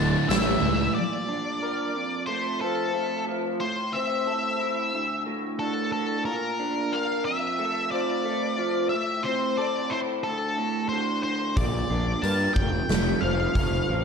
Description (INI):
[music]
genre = quiet-loud alternative rock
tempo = 90 BPM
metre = 4/4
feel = straight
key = unclear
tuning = A4 = 440 Hz
[part]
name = octave-fuzz lead guitar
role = melody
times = 0.0-14.0 s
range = A4 to A5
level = -28 LUFS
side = left 2 dB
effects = distortion, slapback echo
[part]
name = crunchy overdriven guitar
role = riff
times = 0.0-0.9 s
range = D2 to A3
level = -27 LUFS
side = right 9 dB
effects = slapback echo
[part]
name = thick fuzz guitar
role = riff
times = 0.0-0.9 s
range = D2 to A3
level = -29 LUFS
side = left 10 dB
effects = distortion, slapback echo
[part]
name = fuzz picked electric bass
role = bass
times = 0.0-0.9, 11.6-14.0 s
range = D1 to G2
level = -27 LUFS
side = equal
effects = overdrive
[part]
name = big rock drum kit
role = drums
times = 0.3-0.5, 11.6-13.7 s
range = hi-hat, kick drum, snare drum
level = -28 LUFS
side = equal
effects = none
[part]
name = electric guitar through a small old amp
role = arpeggios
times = 1.0-14.0 s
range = D2 to Bb4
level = -28 LUFS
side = right 1 dB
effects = analog chorus, slapback echo
[sound]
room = wet recital hall reverb, RT60 1.6 s, studio ambience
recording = big arena sound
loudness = -24 LUFS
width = side -6 dB against mid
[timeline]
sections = 1.0-14.0 A section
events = half time 1.0-14.0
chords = 0.3 A; 1.0 Bb; 2.0 F; 3.6 Am; 4.9 D5; 6.3 Bb; 7.3 F; 8.9 Am; 10.2 D5; 11.6 Bb; 12.6 F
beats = 0.30 | 0.96 1.62 2.28 2.95 | 3.61 4.27 4.94 5.60 | 6.26 6.93 7.59 8.25 | 8.91 9.58 10.24 10.90 | 11.56 12.23 12.89 13.55